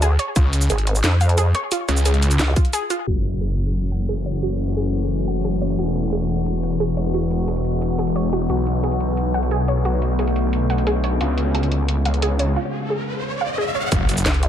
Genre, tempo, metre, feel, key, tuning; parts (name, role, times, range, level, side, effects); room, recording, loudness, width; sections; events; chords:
dark technical drum and bass; 177 BPM; 4/4; straight; F# minor; A4 = 440 Hz
warbly dusty pluck; arpeggios; 0.0-13.8 s; E#4 to F#5; -27 LUFS; right 1 dB; chorus, sidechain pumping, ping-pong delay
vowel-sweep wobble bass; bass; 0.0-2.5, 14.3-14.5 s; G#1 to E#2; -17 LUFS; equal; chorus
drum and bass drum kit; drums; 0.0-14.5 s; hi-hat, rim click, shaker, snare drum; -26 LUFS; equal
snarling distorted saw bass; bass; 0.4-14.2 s; E1 to C#2; -21 LUFS; equal; distortion, tube saturation, sidechain pumping
electronic kick drum; drums; 0.4, 2.6, 13.9-14.0 s; -17 LUFS; equal; overdrive
metallic inharmonic drone; sustained chords; 3.7-14.5 s; C#3 to A4; -24 LUFS; left 2 dB; chorus, built-in reverb, sidechain pumping
impact and riser; sound effects; 3.1-4.4, 12.3-14.5 s; -26 LUFS; equal
light reverb; low-pass filter; -18 LUFS; side -10 dB against mid
0.0-3.1 A section; 3.1-13.9 B section
break 2.7-3.1, 12.6-13.9; impact 3.1-4.4, 13.9-14.5; filter sweep on synth arpeggio sound 3.1-13.9; filter sweep 3.1-13.9; riser 12.3-13.9
0.4 C#; 3.1 F#m7; 5.8 Eadd9; 8.5 Bm7; 11.2 C#; 13.9 F#m7